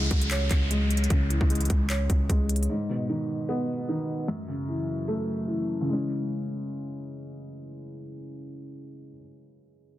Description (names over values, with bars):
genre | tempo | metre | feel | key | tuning
hip hop, trap | 151 BPM | 4/4 | half-time | C# minor | A4 = 440 Hz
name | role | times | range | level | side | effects
felt-muted upright piano | accompaniment | 0.0-10.0 s | F#2 to C#5 | -29 LUFS | equal | low-pass filter
long sustained 808-style bass | bass | 0.0-2.7 s | C#2 | -26 LUFS | equal | none
downlifter | sound effects | 0.0-2.7 s | none | -36 LUFS | equal | none
trap drum kit | drums | 0.1-2.7 s | handclaps, hi-hat, kick drum | -26 LUFS | equal | none
room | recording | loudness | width
digital ambience | dense, heavily limited modern master | -25 LUFS | side -14 dB against mid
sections
0.0-5.9 A section; 5.9-9.1 B section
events
filter sweep on felt piano 0.0-5.9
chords
0.0 C#m; 2.7 G#m; 4.3 F#m7; 5.9 C#m